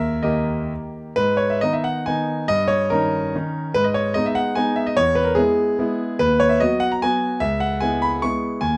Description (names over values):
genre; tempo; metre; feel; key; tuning
classical, romantic triple-time dance for piano with dotted rhythms; 122-156 BPM; 3/4; rubato; G# minor; A4 = 440 Hz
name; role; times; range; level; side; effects
clear concert grand piano; solo; 0.0-8.8 s; C#2 to C#6; -21 LUFS; equal; none
room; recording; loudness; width
light reverb; dark, warm production; -21 LUFS; mono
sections
0.0-1.2 A section; 1.2-8.8 B section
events
none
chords
0.0 D#; 1.2 G#m; 2.5 D#7/G; 3.7 G#m; 5.0 E; 6.2 B/D#; 7.4 C#m7